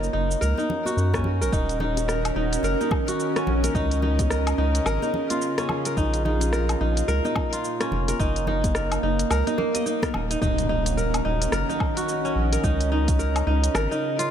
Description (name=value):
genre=organic downtempo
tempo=108 BPM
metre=4/4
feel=swing 60% on 16ths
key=Eb minor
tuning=A4 = 440 Hz
part: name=bowed-like drone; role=sustained chords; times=0.0-14.3 s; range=Bb2 to Eb5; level=-29 LUFS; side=right 1 dB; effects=built-in reverb, sidechain pumping
part: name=kora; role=arpeggios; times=0.0-14.3 s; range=Bb3 to Eb5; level=-26 LUFS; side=right 1 dB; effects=low-pass filter, ping-pong delay
part: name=round analog bass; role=bass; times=0.0-13.9 s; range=Eb1 to Gb2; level=-24 LUFS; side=equal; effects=tube saturation, sidechain pumping
part: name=organic electronic drum kit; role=drums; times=0.0-14.3 s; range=hi-hat, rim click, shaker, woodblock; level=-30 LUFS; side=left 1 dB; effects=none
part: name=congas and bongos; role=percussion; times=0.6-10.3 s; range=none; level=-34 LUFS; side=left 3 dB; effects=none
part: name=electronic kick drum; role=drums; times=1.1-13.2 s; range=none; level=-26 LUFS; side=equal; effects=overdrive
part: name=impact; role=sound effects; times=10.4-12.6 s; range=none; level=-32 LUFS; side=equal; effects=none
room=light reverb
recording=none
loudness=-21 LUFS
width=side -9 dB against mid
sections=0.0-10.4 A section; 10.4-14.3 B section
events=impact 10.4-12.6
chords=0.0 Gb; 1.5 Ebm7; 3.8 Db; 6.0 Bbm7; 8.2 Gb; 10.4 Ebm7; 12.6 Db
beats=0.42 0.97 | 1.53 2.08 2.64 3.19 | 3.75 4.31 4.86 5.42 | 5.97 6.53 7.08 7.64 | 8.20 8.75 9.31 9.86 | 10.42 10.97 11.53 12.08 | 12.64 13.20 13.75 14.31